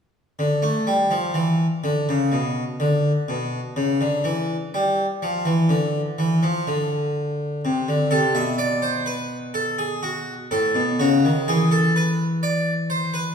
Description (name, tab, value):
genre	classical, baroque-style two-part invention for harpsichord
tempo	62 BPM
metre	4/4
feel	straight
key	unclear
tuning	A4 = 440 Hz
part	harpsichord	solo	0.4-13.3 s	A2 to E5	-20 LUFS	equal	none
room	wet recital hall reverb, RT60 1.6 s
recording	heard from further back in the room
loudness	-20 LUFS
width	side -7 dB against mid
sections	0.0-13.3 A section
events	none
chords	0.0 N.C.; 7.6 Am; 9.5 B7(no3); 11.5 E7(no3)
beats	0.88 1.85 2.82 | 3.78 4.75 5.71 6.67 | 7.63 8.59 9.55 10.51 | 11.47 12.42